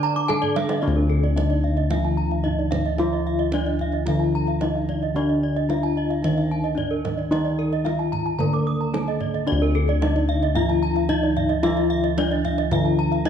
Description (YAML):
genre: Balinese gamelan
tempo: 111 BPM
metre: 4/4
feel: straight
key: D pelog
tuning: A4 = 440 Hz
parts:
  - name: gamelan-type bronze metallophone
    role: melody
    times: 0.0-13.3 s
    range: D4 to D5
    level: -27 LUFS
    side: left 4 dB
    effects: none
  - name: gamelan-type bronze metallophone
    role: accompaniment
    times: 0.0-13.3 s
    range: D3 to D4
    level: -29 LUFS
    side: right 4 dB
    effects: none
  - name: gamelan-type bronze metallophone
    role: arpeggios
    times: 0.0-13.3 s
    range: Bb4-40c to D6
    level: -30 LUFS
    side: right 8 dB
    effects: none
  - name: gamelan-type bossed gongs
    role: bass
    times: 0.0-13.3 s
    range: D2 to E4+50c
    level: -23 LUFS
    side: left 1 dB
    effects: none
  - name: gamelan-type bronze metallophone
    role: arpeggios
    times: 0.2-13.3 s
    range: A4-45c to Eb6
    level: -29 LUFS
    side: left 3 dB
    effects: none
  - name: kendang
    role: percussion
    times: 0.2-13.3 s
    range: none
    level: -32 LUFS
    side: right 5 dB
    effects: none
room: moderate recital hall reverb, RT60 1.7 s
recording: dark, warm production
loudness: -20 LUFS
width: side -8 dB against mid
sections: 0.8-13.3 A section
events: drum fill 0.4-0.8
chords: none